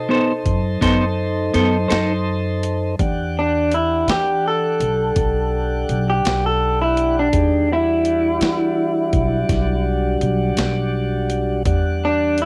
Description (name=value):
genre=slow blues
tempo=55 BPM (dotted quarters)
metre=12/8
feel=straight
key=E minor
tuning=A4 = 441 Hz
part: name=electric guitar through a small old amp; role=melody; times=0.0-12.5 s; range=D4 to D#5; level=-21 LUFS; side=equal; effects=cassette tape
part: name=tonewheel organ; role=sustained chords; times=0.0-12.5 s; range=D#3 to F#5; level=-27 LUFS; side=equal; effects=slow rotary speaker, cassette tape
part: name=upright bass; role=bass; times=0.0-12.5 s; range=B1 to E3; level=-25 LUFS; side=equal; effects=none
part: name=clean electric guitar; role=accompaniment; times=0.1-2.1 s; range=B3 to C5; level=-21 LUFS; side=equal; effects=tremolo, cassette tape
part: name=boom bap sampler-style drum kit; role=drums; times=0.5-12.5 s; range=hi-hat, kick drum, snare drum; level=-25 LUFS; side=equal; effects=cassette tape
room=light reverb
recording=home recording on cassette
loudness=-19 LUFS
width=mono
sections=0.0-3.0 A section; 3.0-12.5 B section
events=clean electric guitar solo 3.0-12.5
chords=0.0 B7b9; 3.0 Em9